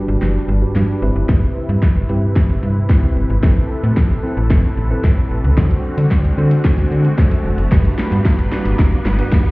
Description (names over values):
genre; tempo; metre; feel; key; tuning
dance-pop; 112 BPM; 4/4; straight; G major; A4 = 440 Hz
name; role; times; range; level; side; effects
bell-like tine electric piano; accompaniment; 0.0-9.5 s; C4 to C5; -25 LUFS; right 1 dB; medium stereo tremolo, sidechain pumping, low-pass filter
filtered supersaw swell; sustained chords; 0.0-9.5 s; C3 to B4; -26 LUFS; equal; sidechain pumping, low-pass filter
riser; sound effects; 2.5-9.5 s; none; -30 LUFS; equal; none
slap-like FM bass; bass; 0.1-9.4 s; F1 to D3; -16 LUFS; equal; sidechain pumping
pop drum kit; drums; 0.2-9.5 s; hi-hat, kick drum, shaker, snare drum; -15 LUFS; equal; none
tambourine; percussion; 7.7-9.4 s; none; -56 LUFS; left 3 dB; none
room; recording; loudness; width
little or no reverb; heard muffled through a wall, stone room reverb, EQ; -13 LUFS; side -22 dB against mid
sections
0.0-9.5 A section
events
build-up 0.0-9.5; drum fill 0.0-9.5; filter sweep 0.0-9.5; riser 2.5-9.5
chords
0.0 Gmaj7; 1.0 Cmaj7; 3.4 Amadd9; 5.6 D7; 7.7 Gmaj7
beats
0.22 0.75 | 1.29 1.82 2.36 2.90 | 3.43 3.97 4.50 5.04 | 5.58 6.11 6.65 7.18 | 7.72 8.25 8.79 9.32